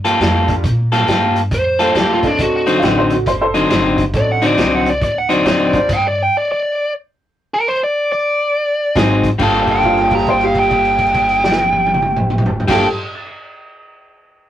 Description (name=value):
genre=electric blues shuffle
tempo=137 BPM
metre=4/4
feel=swing 64% on 8ths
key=G minor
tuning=A4 = 440 Hz
part: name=electric guitar at the edge of break-up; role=riff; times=0.0-5.8, 9.0-12.9 s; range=Ab2 to A4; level=-16 LUFS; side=left 1 dB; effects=none
part: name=upright bass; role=bass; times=0.0-6.3, 9.0-12.8 s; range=F#1 to Bb2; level=-22 LUFS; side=equal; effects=none
part: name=vintage drum kit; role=drums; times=0.0-6.0, 9.0-12.8 s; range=crash cymbal, hi-hat, kick drum, snare drum, toms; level=-20 LUFS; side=equal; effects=none
part: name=clear grand piano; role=accompaniment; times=0.5-5.9, 9.0-13.3 s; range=G2 to C7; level=-25 LUFS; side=equal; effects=none
part: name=biting lead guitar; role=melody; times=1.5-12.9 s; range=D4 to Bb5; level=-16 LUFS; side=right 1 dB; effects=overdrive
part: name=clear upright piano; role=second line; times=2.8-3.8, 9.8-12.9 s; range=F4 to F#5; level=-20 LUFS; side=right 1 dB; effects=none
room=light reverb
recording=rough rehearsal-room recording, warm saturation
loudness=-13 LUFS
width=side -11 dB against mid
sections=0.0-9.4 A section; 9.4-12.9 B section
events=stop 5.9-9.0; held note 9.4-12.6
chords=0.0 Gm9; 2.4 D7b9; 5.9 G5; 9.0 Ab7; 9.4 Gm9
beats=0.21 | 0.64 1.08 1.52 1.95 | 2.39 2.83 3.27 3.70 | 4.14 4.58 5.02 5.45 | 5.89 6.33 6.77 7.21 | 7.64 8.08 8.52 8.96 | 9.40 9.83 10.27 10.71 | 11.15 11.59 12.02 12.46